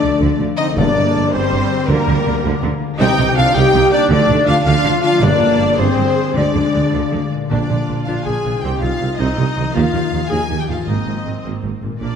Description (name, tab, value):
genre	cinematic, heroic adventure film score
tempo	107 BPM (dotted quarters)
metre	6/8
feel	straight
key	unclear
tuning	A4 = 440 Hz
part	warm symphonic violin section	melody	0.0-12.2 s	Bb4 to Ab5	-25 LUFS	left 4 dB	none
part	flute section	second line	0.0-7.3 s	Bb4 to G5	-25 LUFS	equal	none
part	mellow clarinet	second line	0.0-12.2 s	D4 to G5	-25 LUFS	left 2 dB	none
part	warm symphonic violin section	second line	0.0-12.2 s	Bb4 to Ab5	-26 LUFS	left 1 dB	none
part	warm symphonic viola section	accompaniment	0.0-12.2 s	G3 to Ab4	-24 LUFS	right 3 dB	none
part	dark French horn section	sustained chords	0.0-7.3 s	Bb3 to G4	-18 LUFS	left 3 dB	none
part	concert harp	arpeggios	0.0-12.2 s	G2 to D6	-24 LUFS	left 6 dB	none
part	dark symphonic double bass section	bass	0.0-12.1 s	G1 to Eb2	-22 LUFS	right 4 dB	none
part	mellow tuba	bass	0.0-12.1 s	G1 to Eb2	-25 LUFS	right 4 dB	none
part	warm symphonic cello section	bass	0.0-12.1 s	G2 to Eb3	-24 LUFS	right 4 dB	none
part	timpani	percussion	0.8-8.0 s	G2 to C3	-24 LUFS	left 2 dB	none
room	moderate scoring stage reverb, RT60 2.1 s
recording	faint mains hum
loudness	-14 LUFS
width	side -7 dB against mid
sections	0.0-7.5 A section; 7.5-12.2 B section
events	none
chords	0.0 Dm; 0.8 Gm; 1.9 Ddim; 3.0 Cmadd9; 4.1 Dm; 5.2 Gm; 6.4 Ddim; 7.5 Bb; 8.6 Cm; 9.7 Ebsus2; 10.9 Abadd9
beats	0.21 | 0.77 1.33 | 1.89 2.44 | 3.00 3.55 | 4.11 4.66 | 5.21 5.78 | 6.35 6.93 | 7.51 8.07 | 8.63 9.19 | 9.74 10.30 | 10.87 11.44 | 12.01